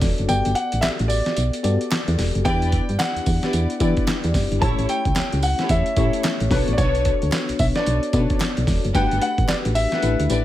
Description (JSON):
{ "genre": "R&B, new jack swing", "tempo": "111 BPM", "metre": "4/4", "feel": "swing 61% on 16ths", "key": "unclear", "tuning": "A4 = 441 Hz", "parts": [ { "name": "FM electric piano with tremolo", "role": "accompaniment", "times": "0.0-10.4 s", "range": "A3 to D5", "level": "-26 LUFS", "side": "left 6 dB", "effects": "none" }, { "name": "solid FM bass", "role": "bass", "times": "0.0-10.4 s", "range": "E1 to E3", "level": "-21 LUFS", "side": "right 1 dB", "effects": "none" }, { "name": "dusty soul sampler-style drum kit", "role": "drums", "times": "0.0-10.4 s", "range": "handclaps, hi-hat, kick drum, snare drum, tambourine", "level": "-24 LUFS", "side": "right 1 dB", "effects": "overdrive" }, { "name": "warm concert grand piano", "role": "melody", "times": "0.3-10.4 s", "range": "B4 to A5", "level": "-25 LUFS", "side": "equal", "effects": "none" }, { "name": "group handclap", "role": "percussion", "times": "0.8-9.6 s", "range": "none", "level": "-39 LUFS", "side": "right 6 dB", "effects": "none" }, { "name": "muted studio string section", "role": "stabs", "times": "2.4-10.4 s", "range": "D4 to F#5", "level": "-30 LUFS", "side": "right 1 dB", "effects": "none" } ], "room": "little or no reverb", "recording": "none", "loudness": "-18 LUFS", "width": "side -13 dB against mid", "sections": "0.0-10.4 A section", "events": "kick muted 0.3-2.5, 10.0-10.4", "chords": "0.3 Gmaj9; 2.5 Em7; 4.6 A7; 6.5 Bm9; 8.9 Gmaj9" }